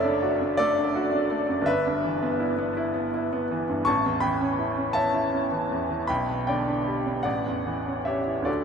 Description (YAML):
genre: classical, romantic nocturne for solo piano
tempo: 47-56 BPM (dotted quarters)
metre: 6/8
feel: rubato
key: unclear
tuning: A4 = 440 Hz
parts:
  - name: bright baby grand piano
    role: solo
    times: 0.0-8.6 s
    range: F#1 to C#6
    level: -23 LUFS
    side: equal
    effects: none
room: wet huge ambient reverb, RT60 8.8 s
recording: in a vast, echoing space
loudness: -23 LUFS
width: side -6 dB against mid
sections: 0.0-8.6 A section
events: none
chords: 0.0 D/F#; 1.7 Em/G; 3.9 A; 6.1 G/B; 7.2 A7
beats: 0.60 | 1.69 2.78 | 3.88 4.96 | 6.09 7.25 | 8.47